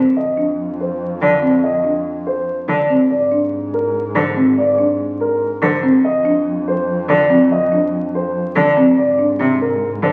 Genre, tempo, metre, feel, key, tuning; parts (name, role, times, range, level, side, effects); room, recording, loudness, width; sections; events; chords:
classical, minimalist pattern music; 286 BPM (eighths); 7/8; straight; F dorian; A4 = 440 Hz
folk marimba with soft mallets; arpeggios; 0.0-9.5 s; C4 to D4; -20 LUFS; equal
rich double bass; bass; 0.0-10.1 s; F2 to Ab2; -29 LUFS; equal
dark baby grand piano; melody; 0.2-10.1 s; Bb4 to Eb5; -20 LUFS; equal
rich cello; accompaniment; 1.2-10.1 s; C3 to D3; -21 LUFS; equal
wet recital hall reverb, RT60 1.3 s; very old 78 rpm record, vinyl crackle; -16 LUFS; mono
0.0-10.1 A section
0.2 F5; 3.1 Ab; 6.0 F5; 9.0 Abadd9